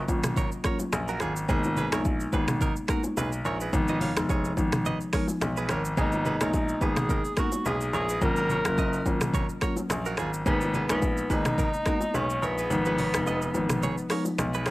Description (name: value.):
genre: afrobeats.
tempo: 107 BPM.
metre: 4/4.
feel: swing 55% on 16ths.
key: G# dorian.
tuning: A4 = 441 Hz.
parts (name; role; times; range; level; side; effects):
breathy tenor saxophone; melody; 0.0-0.3, 6.0-14.4 s; B3 to A#4; -31 LUFS; equal; none.
direct-recorded clean electric guitar; riff; 0.0-14.7 s; D#4 to E#5; -35 LUFS; right 5 dB; analog delay.
downlifter; sound effects; 0.6-1.5 s; none; barely audible; none; none.
marimba with medium mallets; accompaniment; 0.1-14.3 s; E#3 to E#4; -31 LUFS; left 1 dB; none.
clear grand piano; bass; 0.1-14.7 s; E#1 to B1; -30 LUFS; equal; none.
afro-pop drum kit; drums; 0.1-14.7 s; finger snaps, hi-hat, kick drum, rim click, shaker, toms; -29 LUFS; equal; none.
bongos and congas; percussion; 0.1-14.5 s; none; -36 LUFS; left 1 dB; none.
room: studio reverb.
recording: dry, gritty hardware recording.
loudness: -24 LUFS.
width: side -18 dB against mid.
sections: 0.0-14.7 A section.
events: kick muted 12.7-14.7.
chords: 0.0 D#m7 (rootless); 1.5 G#madd9; 3.7 C#7; 6.0 G#madd9; 8.2 D#m7 (rootless); 10.5 G#madd9; 12.7 C#7.